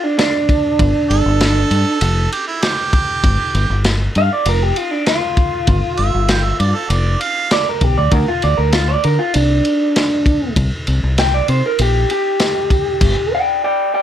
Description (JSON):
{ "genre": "straight-eighth soul blues", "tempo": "98 BPM", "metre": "4/4", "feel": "straight", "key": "unclear", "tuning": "A4 = 440 Hz", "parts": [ { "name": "electric guitar through a small old amp", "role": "melody", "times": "0.0-14.0 s", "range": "D4 to G5", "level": "-16 LUFS", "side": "right 1 dB", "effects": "none" }, { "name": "crunchy breakbeat drum kit", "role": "drums", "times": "0.2-13.2 s", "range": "crash cymbal, kick drum, ride cymbal, snare drum", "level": "-19 LUFS", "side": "equal", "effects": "none" }, { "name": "fingered electric bass", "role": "bass", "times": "0.8-13.1 s", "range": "F1 to D3", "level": "-16 LUFS", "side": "left 1 dB", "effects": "none" }, { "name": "clear harmonica", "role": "second line", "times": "1.1-7.5 s", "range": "E4 to G5", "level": "-20 LUFS", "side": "right 5 dB", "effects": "overdrive" } ], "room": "little or no reverb", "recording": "none", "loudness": "-13 LUFS", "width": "side -10 dB against mid", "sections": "0.0-14.0 A section", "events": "none", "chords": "0.0 G7(no3); 8.1 Csus2; 10.6 C5; 13.0 G5" }